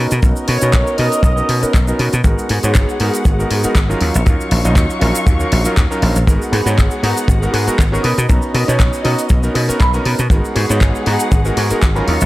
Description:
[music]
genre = nu-disco, nu disco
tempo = 119 BPM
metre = 4/4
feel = swing 54% on 16ths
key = G# dorian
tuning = A4 = 440 Hz
[part]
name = bright electric grand piano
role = accompaniment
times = 0.0-12.2 s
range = F#3 to A#5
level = -20 LUFS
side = right 1 dB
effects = low-pass filter, analog delay
[part]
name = dark chamber string section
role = sustained chords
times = 0.0-12.3 s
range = F#3 to C#6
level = -25 LUFS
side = left 2 dB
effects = sidechain pumping
[part]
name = dry thumbed slap bass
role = bass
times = 0.0-12.3 s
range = G#1 to B2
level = -16 LUFS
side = equal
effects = none
[part]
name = house drum kit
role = drums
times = 0.1-12.3 s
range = handclaps, hi-hat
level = -24 LUFS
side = left 1 dB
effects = none
[part]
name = cabasa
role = percussion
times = 0.1-12.3 s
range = none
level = -28 LUFS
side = right 2 dB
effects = none
[part]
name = kick drum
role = drums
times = 0.2-11.9 s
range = none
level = -14 LUFS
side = equal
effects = none
[part]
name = mellow trumpet section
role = melody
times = 0.5-1.7 s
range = C#5 to D#5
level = -21 LUFS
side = right 1 dB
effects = analog delay
[part]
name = electric guitar with an envelope filter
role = riff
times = 6.5-12.3 s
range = D#4 to B5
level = -24 LUFS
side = right 1 dB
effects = lush chorus, analog delay
[sound]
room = light reverb, small room reverb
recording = dry, gritty hardware recording, transformer saturation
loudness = -12 LUFS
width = side -17 dB against mid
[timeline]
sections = 0.0-12.3 A section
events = filter sweep on electric grand piano 0.0-12.3; clean electric guitar fill 9.6-10.3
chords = 0.0 Bmaj7; 2.2 G#m7; 4.0 D#m9; 6.3 G#m7; 8.0 Bmaj7; 10.3 G#m7

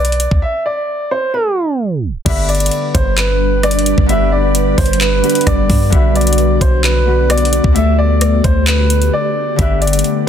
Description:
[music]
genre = hip hop, trap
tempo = 131 BPM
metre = 4/4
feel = half-time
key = G major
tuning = A4 = 440 Hz
[part]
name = dark grand piano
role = melody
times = 0.0-10.2 s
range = B4 to E5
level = -18 LUFS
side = right 1 dB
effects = digital delay
[part]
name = clean 808-style bass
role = bass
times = 0.0-10.0 s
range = G1 to G2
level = -15 LUFS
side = equal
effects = none
[part]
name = trap drum kit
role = drums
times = 0.0-10.2 s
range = crash cymbal, handclaps, hi-hat, kick drum, rim click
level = -16 LUFS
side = equal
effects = none
[part]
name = Celtic harp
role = accompaniment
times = 2.2-10.3 s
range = D3 to B4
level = -20 LUFS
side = left 8 dB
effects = none
[part]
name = ethereal airy pad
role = sustained chords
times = 2.9-10.3 s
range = D3 to D5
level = -19 LUFS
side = right 1 dB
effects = ensemble chorus, built-in reverb, phaser
[sound]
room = light reverb, digital ambience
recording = dense, heavily limited modern master, tape stop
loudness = -11 LUFS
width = side -9 dB against mid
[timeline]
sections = 0.0-2.3 A section; 2.3-10.3 B section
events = break 0.4-2.3, 9.1-9.6; tape stop 1.3-2.3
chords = 0.4 N.C.; 2.3 G; 5.9 Bm; 7.8 Dsus4; 9.6 G

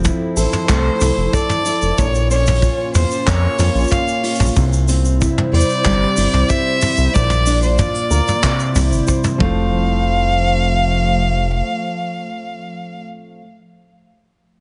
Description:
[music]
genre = folktronica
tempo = 93 BPM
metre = 4/4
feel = straight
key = F major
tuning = A4 = 440 Hz
[part]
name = warbly tape-like pad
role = sustained chords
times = 0.0-13.1 s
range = F3 to F5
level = -28 LUFS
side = equal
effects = chorus, built-in reverb
[part]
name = fingerpicked steel-string acoustic guitar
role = arpeggios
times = 0.0-13.5 s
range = Bb2 to Db5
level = -24 LUFS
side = equal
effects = digital delay
[part]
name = round analog bass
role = bass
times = 0.0-11.6 s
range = F1 to F2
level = -19 LUFS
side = equal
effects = none
[part]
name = vintage brush drum kit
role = drums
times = 0.0-9.4 s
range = handclaps, hi-hat, shaker, toms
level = -25 LUFS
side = equal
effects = none
[part]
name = kick drum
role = drums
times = 0.1-9.5 s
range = none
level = -22 LUFS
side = equal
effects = none
[part]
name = clear violin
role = melody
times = 0.4-13.1 s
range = C5 to F5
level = -23 LUFS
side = equal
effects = digital delay
[sound]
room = light reverb, studio reverb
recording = nothing above 10.4 kHz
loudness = -16 LUFS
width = mono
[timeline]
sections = 0.0-9.7 A section; 9.7-12.3 B section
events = none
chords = 0.0 Fmaj7; 2.0 Bbm; 4.6 C; 7.1 Bb; 8.4 C; 9.4 F

